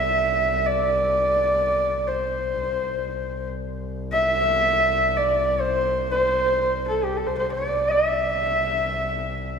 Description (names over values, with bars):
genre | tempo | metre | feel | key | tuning
mongolian traditional, Mongolian folk | free time | none | none | C gong mode | A4 = 438 Hz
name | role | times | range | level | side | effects
rich horsehead fiddle | melody | 0.0-9.6 s | G4 to E5 | -20 LUFS | equal | none
dark double bass | drone | 0.0-9.6 s | C2 | -30 LUFS | left 1 dB | none
room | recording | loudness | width
wet concert hall reverb, RT60 2.1 s | heard from further back in the room | -20 LUFS | side -6 dB against mid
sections
0.0-9.6 A section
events
none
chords
none